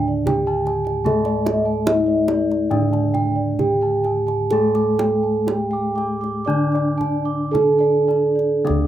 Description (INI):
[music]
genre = Javanese gamelan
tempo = 52-76 BPM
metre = 4/4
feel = straight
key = unclear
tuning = A4 = 440 Hz
[part]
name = gamelan-type bronze metallophone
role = melody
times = 0.0-8.9 s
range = D4 to D5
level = -20 LUFS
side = right 2 dB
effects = plate reverb
[part]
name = gamelan-type bronze metallophone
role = accompaniment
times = 0.0-8.9 s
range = D3 to D4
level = -25 LUFS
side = left 2 dB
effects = none
[part]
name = gamelan-type bossed gongs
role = arpeggios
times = 0.0-8.9 s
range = D5 to D6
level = -31 LUFS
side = left 3 dB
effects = plate reverb
[part]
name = gamelan-type bronze metallophone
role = arpeggios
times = 0.0-8.9 s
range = D5 to D6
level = -26 LUFS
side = right 3 dB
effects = plate reverb
[part]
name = gamelan-type bossed gongs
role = bass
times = 0.0-8.9 s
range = D2 to A4-40c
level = -24 LUFS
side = left 2 dB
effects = none
[part]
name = kendang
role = percussion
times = 0.3-8.9 s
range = none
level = -27 LUFS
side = right 2 dB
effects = none
[sound]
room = wet small room reverb, RT60 0.6 s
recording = rough home demo mix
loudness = -17 LUFS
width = side -12 dB against mid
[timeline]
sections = 0.0-8.6 A section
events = none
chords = none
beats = 0.27 | 1.06 1.87 2.72 3.59 | 4.51 5.47 6.48 7.53 | 8.64